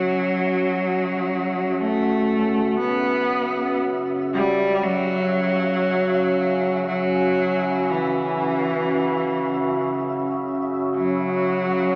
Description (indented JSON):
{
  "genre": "dark ambient drone",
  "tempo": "59 BPM",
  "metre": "4/4",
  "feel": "straight",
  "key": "unclear",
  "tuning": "A4 = 440 Hz",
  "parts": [
    { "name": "clear cello", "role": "melody", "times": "0.0-12.0 s", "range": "E3 to B3", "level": "-21 LUFS", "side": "equal", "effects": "tape echo" },
    { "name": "dark analog pad", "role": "sustained chords", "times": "0.0-12.0 s", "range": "C#4 to F#5", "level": "-24 LUFS", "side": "equal", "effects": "chorus" },
    { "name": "overtone-sweeping drone", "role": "drone", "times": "0.0-12.0 s", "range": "C#3", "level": "-30 LUFS", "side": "equal", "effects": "chorus, built-in reverb" },
    { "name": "flickering grainy texture", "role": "texture", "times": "0.0-12.0 s", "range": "E5 to F#5", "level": "-33 LUFS", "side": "equal", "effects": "built-in reverb" }
  ],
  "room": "wet plate reverb, RT60 2.8 s",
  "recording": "echo-heavy mix, small speaker sound",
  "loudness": "-19 LUFS",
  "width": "side -30 dB against mid",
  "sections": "0.0-12.0 A section",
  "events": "fade-in on synth drone 0.0-12.0; fade-in on synth texture 0.0-12.0",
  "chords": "0.0 F#5",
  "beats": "0.77 1.79 | 2.81 3.82 4.84 5.86 | 6.88 7.89 8.91 9.93 | 10.94"
}